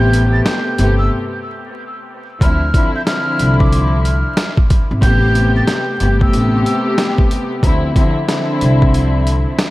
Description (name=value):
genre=hip hop, boom-bap hip-hop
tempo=92 BPM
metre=4/4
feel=swing 63% on 16ths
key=D dorian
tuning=A4 = 440 Hz
part: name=breathy mellow silver concert flute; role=melody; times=0.0-7.1 s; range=D6 to A6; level=-22 LUFS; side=right 1 dB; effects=high-pass filter, low-pass filter, dub echo
part: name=dark studio string section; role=accompaniment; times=0.0-9.7 s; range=C3 to G4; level=-18 LUFS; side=left 1 dB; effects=cassette tape, high-pass filter, low-pass filter, dub echo
part: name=upright bass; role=bass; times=0.0-9.4 s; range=G1 to D2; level=-15 LUFS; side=equal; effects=none
part: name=boom bap sampler-style drum kit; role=drums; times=0.1-9.7 s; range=hi-hat, kick drum, snare drum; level=-15 LUFS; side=equal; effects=none
room=studio reverb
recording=echo-heavy mix, vinyl crackle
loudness=-12 LUFS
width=side -18 dB against mid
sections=0.0-9.7 A section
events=break 0.0-2.4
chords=0.0 Am9; 2.4 Dm9; 5.0 Am9; 7.6 Dm9